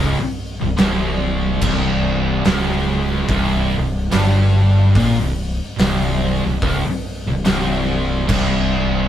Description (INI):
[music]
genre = stoner and doom metal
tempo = 72 BPM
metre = 4/4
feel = swing 59% on 8ths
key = unclear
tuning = A4 = 436 Hz
[part]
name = sludgy distorted guitar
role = riff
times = 0.0-9.1 s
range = C2 to Bb2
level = -21 LUFS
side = right 1 dB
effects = overdrive
[part]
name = thick fuzz guitar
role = riff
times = 0.0-9.1 s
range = C2 to Bb2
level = -23 LUFS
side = left 4 dB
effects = distortion
[part]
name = thick fuzz guitar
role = riff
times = 0.0-9.1 s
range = C2 to Bb2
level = -21 LUFS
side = right 1 dB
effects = distortion
[part]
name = growling fingered electric bass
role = bass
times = 0.0-9.1 s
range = C1 to Bb1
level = -23 LUFS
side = equal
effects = overdrive
[part]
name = oversized low-tuned drum kit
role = drums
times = 0.8-8.5 s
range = crash cymbal, hi-hat, kick drum, snare drum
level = -22 LUFS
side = right 1 dB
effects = none
[sound]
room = light reverb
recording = band playing live in one room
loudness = -15 LUFS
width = side -10 dB against mid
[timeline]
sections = 0.0-9.1 A section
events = none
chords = 0.0 C5